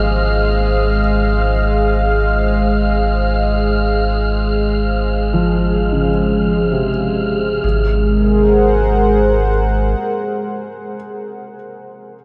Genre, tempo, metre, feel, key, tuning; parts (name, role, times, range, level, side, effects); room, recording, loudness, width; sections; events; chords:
ambient; free time; Ab mixolydian; A4 = 440 Hz
warm analog pad; sustained chords; 0.0-11.4 s; Ab3 to Gb5; -20 LUFS; equal; chorus
felt-muted upright piano; arpeggios; 0.0-12.2 s; C3 to Ab4; -24 LUFS; equal; tape echo
warm sub bass; bass; 0.0-9.9 s; Ab1; -20 LUFS; equal
wind-like tuned noise texture; texture; 0.0-7.7 s; F6; -28 LUFS; equal; built-in reverb
wet huge ambient reverb, RT60 8.2 s; dark, warm production; -16 LUFS; mono
0.0-7.6 A section; 7.6-10.8 B section
0.0 Dbmaj7/Ab; 7.6 Ab7